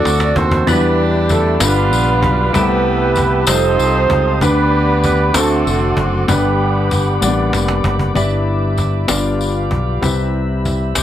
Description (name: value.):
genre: slow gospel.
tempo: 64 BPM (dotted quarters).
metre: 6/8.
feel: straight.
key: G major.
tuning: A4 = 440 Hz.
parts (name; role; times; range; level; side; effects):
mellow horn section; melody; 0.0-7.5 s; G3 to D5; -16 LUFS; right 3 dB; none.
warm concert grand piano; accompaniment; 0.0-11.0 s; G2 to G6; -20 LUFS; left 3 dB; none.
fingered electric bass; bass; 0.0-11.0 s; F1 to E2; -18 LUFS; equal; none.
cajon; drums; 0.1-11.0 s; none; -20 LUFS; equal; none.
tambourine; percussion; 0.1-11.0 s; none; -25 LUFS; left 8 dB; none.
percussive tonewheel organ; sustained chords; 0.7-11.0 s; G4 to Eb6; -23 LUFS; equal; fast rotary speaker.
warm French horn section; sustained chords; 8.2-11.0 s; G3 to F4; -28 LUFS; left 3 dB; none.
room: light reverb, studio ambience.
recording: none.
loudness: -13 LUFS.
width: side -11 dB against mid.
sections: 0.0-8.2 A section; 8.2-11.0 B section.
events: drum fill 0.0-0.7, 7.2-8.2.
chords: 0.0 D7; 0.7 Em7; 1.6 G7; 2.5 C6; 3.5 F9; 4.4 G/D; 5.3 D7; 6.3 Gmaj7; 8.2 G6; 9.1 G7; 10.0 Cmaj7.